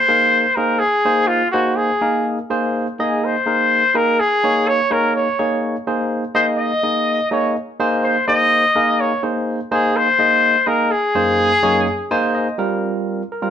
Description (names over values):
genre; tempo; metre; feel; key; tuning
jazz; 250 BPM (eighths); 7/8; straight; Ab mixolydian; A4 = 440 Hz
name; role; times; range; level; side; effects
warm trumpet; melody; 0.0-12.3 s; F4 to Eb5; -16 LUFS; left 1 dB; none
barky tine electric piano; accompaniment; 0.1-13.5 s; Gb2 to Ab5; -19 LUFS; right 1 dB; medium stereo tremolo
room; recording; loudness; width
moderate studio reverb, RT60 0.9 s; band playing live in one room; -15 LUFS; side -8 dB against mid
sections
0.0-12.6 A section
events
tine electric piano fill 11.9-12.6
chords
0.0 Abadd9; 4.2 Bbm7; 5.9 Abadd9; 10.9 Gbadd9; 11.9 Bb9sus4; 12.6 Fsus24